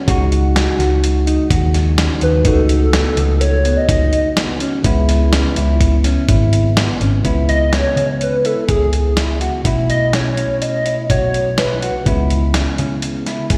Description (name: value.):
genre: progressive instrumental, band music in an uneven meter.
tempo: 125 BPM.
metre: 5/4.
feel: straight.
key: C# minor.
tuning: A4 = 440 Hz.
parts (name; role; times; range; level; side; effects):
bell-like tine electric piano; accompaniment; 0.0-13.6 s; B2 to F#4; -24 LUFS; equal; lush chorus, slapback echo.
mellow electric guitar; arpeggios; 0.0-13.6 s; B3 to G#4; -26 LUFS; equal; lush chorus, slapback echo.
hollow-body short-scale picked electric bass; bass; 0.1-13.6 s; G#1 to C#3; -19 LUFS; equal; none.
dusty soul sampler-style drum kit; drums; 0.1-13.6 s; hi-hat, kick drum, snare drum; -22 LUFS; equal; none.
hollow square lead; melody; 2.2-11.9 s; G#4 to D#5; -21 LUFS; equal; chorus, slapback echo.
room: light reverb.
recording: live gig heard through the venue's PA, recital hall reverb.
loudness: -16 LUFS.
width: mono.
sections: 0.0-7.2 A section; 7.2-13.6 B section.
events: none.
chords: 0.1 G#7sus4/C#; 2.5 B7/C#; 4.8 C#m7; 9.6 B9sus4; 12.1 C#m7.